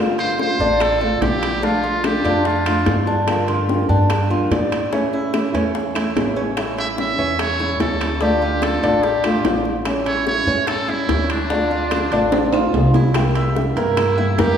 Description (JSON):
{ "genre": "latin, Cuban son and guajira", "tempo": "146 BPM", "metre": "4/4", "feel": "straight", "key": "D minor", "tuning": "A4 = 443 Hz", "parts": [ { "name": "flamenco guitar", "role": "accompaniment", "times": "0.0-14.6 s", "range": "C3 to G4", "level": "-22 LUFS", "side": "left 1 dB", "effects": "none" }, { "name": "trumpet with metal mute", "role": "melody", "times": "0.2-3.1, 6.8-14.6 s", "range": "D4 to E5", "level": "-23 LUFS", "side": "right 2 dB", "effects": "none" }, { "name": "Cuban tres", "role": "arpeggios", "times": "0.2-14.6 s", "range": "C#4 to E5", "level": "-22 LUFS", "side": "right 1 dB", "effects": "none" }, { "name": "bongos", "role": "percussion", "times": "0.2-14.6 s", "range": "none", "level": "-26 LUFS", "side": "left 3 dB", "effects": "none" }, { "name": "timbales", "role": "percussion", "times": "0.2-14.6 s", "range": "none", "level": "-26 LUFS", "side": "right 3 dB", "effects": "none" }, { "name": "upright bass", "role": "bass", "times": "0.6-14.6 s", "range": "A1 to A2", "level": "-23 LUFS", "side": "equal", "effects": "none" }, { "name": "claves", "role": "percussion", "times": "0.8-14.2 s", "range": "none", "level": "-37 LUFS", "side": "left 3 dB", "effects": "none" } ], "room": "wet scoring stage reverb, RT60 1.6 s", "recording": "recorded in a church or concert hall, small room ambience", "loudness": "-16 LUFS", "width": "side -8 dB against mid", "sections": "0.0-13.2 A section; 13.2-14.6 B section", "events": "drum fill 12.3-13.2", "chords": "0.0 Dm7; 1.6 Bbmaj7; 3.3 Gm7; 4.9 A; 6.6 A7; 8.2 Dm; 9.9 A7; 11.5 Dm7; 13.2 C7" }